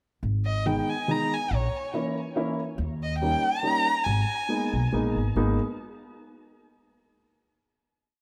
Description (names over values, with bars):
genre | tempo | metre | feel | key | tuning
musette waltz | 141 BPM | 3/4 | swing 54% on 8ths, rubato | G# harmonic minor | A4 = 440 Hz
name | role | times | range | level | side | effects
upright bass | bass | 0.2-5.6 s | G#1 to D#2 | -29 LUFS | equal | none
dark violin | melody | 0.5-4.9 s | C#5 to A#5 | -30 LUFS | equal | tape echo
warm upright piano | accompaniment | 0.7-5.6 s | D#3 to E4 | -31 LUFS | equal | none
room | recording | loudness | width
moderate plate reverb, RT60 2.5 s | dreamy mix soaked in reverb | -27 LUFS | mono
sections
0.2-5.4 A section; 5.4-6.6 final chord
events
none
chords
0.2 G#m; 1.5 A#dim; 2.8 D#7; 4.1 G#madd9